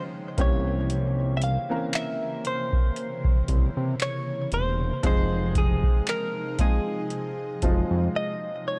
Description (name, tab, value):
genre	contemporary R&B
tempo	58 BPM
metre	4/4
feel	swing 54% on 16ths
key	unclear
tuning	A4 = 440 Hz
part	direct-recorded clean electric guitar	melody	0.0-8.8 s	Ab4 to F5	-33 LUFS	equal	analog chorus, delay
part	clear grand piano	accompaniment	0.0-8.8 s	Eb3 to Bb4	-34 LUFS	equal	none
part	ethereal airy pad	sustained chords	0.0-8.8 s	C3 to Eb4	-37 LUFS	equal	ensemble chorus, built-in reverb, phaser
part	fat analog bass	bass	0.4-8.1 s	E1 to C3	-28 LUFS	equal	none
part	booming analog drum machine	drums	0.4-7.9 s	handclaps, hi-hat, kick drum	-25 LUFS	equal	none
room	digital ambience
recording	dark, warm production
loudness	-26 LUFS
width	mono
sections	0.0-8.8 A section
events	break 8.1-8.8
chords	0.4 C7b9; 5.0 Fm7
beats	| 0.90 1.93 2.97 4.00 | 5.04 6.07 7.11 8.14